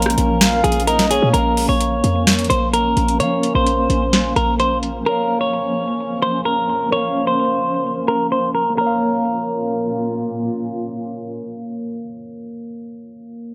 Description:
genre	hip hop, trap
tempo	129 BPM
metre	4/4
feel	half-time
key	Bb minor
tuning	A4 = 440 Hz
part	clean electric guitar	melody	0.0-10.1 s	Ab4 to Db5	-22 LUFS	equal	delay
part	mellow tine electric piano	accompaniment	0.0-13.5 s	Bb3 to F5	-26 LUFS	equal	phaser
part	granular cloud pad	sustained chords	0.0-11.9 s	Bb2 to F4	-29 LUFS	equal	built-in reverb
part	short 808-style bass	bass	0.0-5.0 s	Bb1 to F3	-23 LUFS	equal	none
part	booming analog drum machine	drums	0.0-4.9 s	hi-hat, rim click, snare drum	-20 LUFS	equal	none
part	breathy flute-like synth lead	second line	0.4-1.3 s	Db5 to F5	-25 LUFS	equal	chorus, delay
room	light reverb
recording	low-pass filter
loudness	-18 LUFS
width	mono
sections	0.0-1.3 A section; 1.3-8.8 B section; 8.8-12.5 C section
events	filter sweep 1.3-8.8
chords	0.0 Db/Bb; 8.8 Bbm

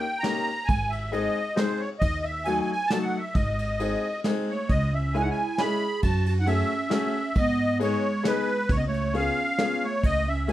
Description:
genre	musette waltz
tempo	135 BPM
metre	3/4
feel	straight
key	C# minor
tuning	A4 = 440 Hz
part	musette accordion	melody	0.0-10.5 s	B4 to B5	-28 LUFS	equal	none
part	bright upright piano	accompaniment	0.0-10.5 s	F#3 to G#4	-28 LUFS	left 3 dB	none
part	soft brush drum kit	drums	0.2-10.5 s	kick drum, ride cymbal, snare drum	-30 LUFS	equal	none
part	upright bass	bass	0.7-10.5 s	G#1 to G#2	-28 LUFS	equal	none
part	clear clarinet	second line	4.5-10.5 s	G#3 to G#4	-30 LUFS	right 4 dB	none
room	moderate studio ambience, RT60 0.5 s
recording	none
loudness	-23 LUFS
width	side -13 dB against mid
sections	0.0-10.5 A section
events	none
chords	0.0 D#7; 0.7 G#; 2.0 D#dim; 3.4 G#; 4.7 C#m; 6.0 F#madd9; 7.4 G#m; 8.7 C#7

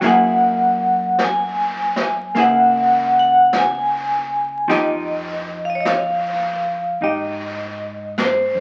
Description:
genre	jazz ballad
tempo	52 BPM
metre	4/4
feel	swing 69% on 8ths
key	unclear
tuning	A4 = 438 Hz
part	vibraphone with medium hard mallets	melody	0.0-8.6 s	C5 to Ab5	-20 LUFS	equal	none
part	vintage hollow-body jazz guitar	accompaniment	0.0-8.6 s	F3 to Ab4	-25 LUFS	equal	none
part	upright bass	bass	0.0-8.6 s	Db2 to Ab2	-38 LUFS	equal	none
part	jazz brush drum kit	drums	0.0-8.6 s	brushed snare drum, hi-hat, snare drum	-29 LUFS	equal	none
room	moderate large studio reverb, RT60 1.3 s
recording	very old 78 rpm record, vinyl crackle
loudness	-18 LUFS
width	mono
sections	0.0-8.6 A section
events	none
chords	0.0 Gb9; 4.7 Fm9

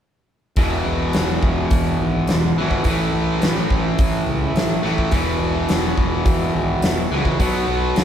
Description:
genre	blues rock power trio and southern rock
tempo	106 BPM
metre	4/4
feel	straight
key	E major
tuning	A4 = 439 Hz
part	distorted electric guitar	riff	0.6-8.0 s	E2 to B3	-20 LUFS	equal	overdrive
part	fuzz picked electric bass	bass	0.6-8.0 s	E1 to C#2	-24 LUFS	equal	overdrive
part	huge arena drum kit	drums	0.6-8.0 s	hi-hat, kick drum, snare drum	-21 LUFS	equal	none
room	moderate studio reverb, RT60 0.6 s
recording	band playing live in one room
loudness	-17 LUFS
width	side -9 dB against mid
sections	0.6-8.0 A section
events	none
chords	0.6 E; 2.9 A5; 5.1 E5; 7.4 B5

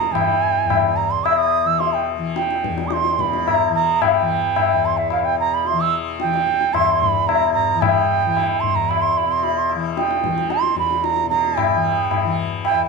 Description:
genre	indian classical, Hindustani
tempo	110 BPM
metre	7/4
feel	straight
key	E raga todi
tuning	A4 = 440 Hz
part	bright bansuri	melody	0.0-12.9 s	E5 to E6	-19 LUFS	right 10 dB	none
part	tanpura	drone	0.0-12.9 s	E2 to E3	-26 LUFS	left 4 dB	stereo widening
part	tabla	percussion	0.0-12.8 s	none	-21 LUFS	left 14 dB	none
room	light reverb, small room ambience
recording	1960s-style stereo with parts hard left and right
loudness	-16 LUFS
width	side -3 dB against mid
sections	0.0-12.9 A section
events	speeding up 0.0-12.9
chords	none

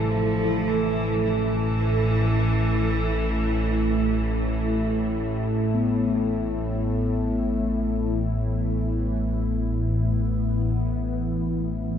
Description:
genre	dark ambient drone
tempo	free time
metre	none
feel	none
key	unclear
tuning	A4 = 440 Hz
part	warm cello	melody	0.0-5.2 s	E3 to F3	-31 LUFS	left 1 dB	analog delay
part	sweeping resonant pad	sustained chords	0.0-12.0 s	A2 to A4	-28 LUFS	right 1 dB	chorus, phaser
part	gamelan-type bronze metallophone	arpeggios	0.0-4.9 s	none	barely audible	none	none
part	analog drone	drone	0.0-12.0 s	A1 to A2	-24 LUFS	equal	chorus
part	quartz singing bowl	texture	0.0-12.0 s	B3 to C5	-31 LUFS	left 1 dB	none
room	wet huge ambient reverb, RT60 7.7 s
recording	dreamy mix soaked in reverb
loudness	-22 LUFS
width	side -8 dB against mid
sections	0.0-12.0 A section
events	fade-out on analog synth pad 0.0-12.0; filter sweep on synth drone 0.0-12.0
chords	0.0 Am; 5.8 E5/A

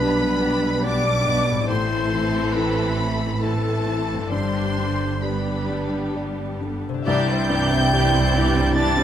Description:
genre	cinematic, emotional film score for orchestra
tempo	64-73 BPM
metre	3/4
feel	rubato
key	unclear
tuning	A4 = 439 Hz
part	rich studio violin section	melody	0.0-9.0 s	A5 to A6	-28 LUFS	left 1 dB	none
part	mellow clarinet	second line	0.0-9.0 s	E4 to D5	-28 LUFS	equal	none
part	warm studio violin section	second line	0.0-9.0 s	B3 to D5	-31 LUFS	left 2 dB	none
part	felt-muted upright piano	accompaniment	0.0-9.0 s	B1 to D5	-27 LUFS	left 2 dB	none
part	rich studio viola section	accompaniment	0.0-9.0 s	E3 to D4	-30 LUFS	right 2 dB	none
part	mellow French horn section	sustained chords	0.0-9.0 s	E3 to E4	-30 LUFS	left 1 dB	none
part	concert harp	arpeggios	0.0-9.0 s	G2 to E5	-31 LUFS	left 6 dB	none
part	warm studio cello section	bass	0.0-9.0 s	G2 to C3	-28 LUFS	right 4 dB	none
part	warm studio double bass section	bass	0.0-9.0 s	G1 to C2	-27 LUFS	right 3 dB	none
part	large flute ensemble	second line	7.1-9.0 s	G5 to A5	-26 LUFS	equal	none
part	warm oboe	second line	7.1-9.0 s	D5	-28 LUFS	right 1 dB	none
room	moderate scoring stage reverb, RT60 1.6 s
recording	close, detailed microphones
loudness	-19 LUFS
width	side -10 dB against mid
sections	0.0-7.1 A section; 7.1-9.0 B section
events	none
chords	0.0 G/B; 1.7 Am; 4.3 G; 7.1 Cadd9

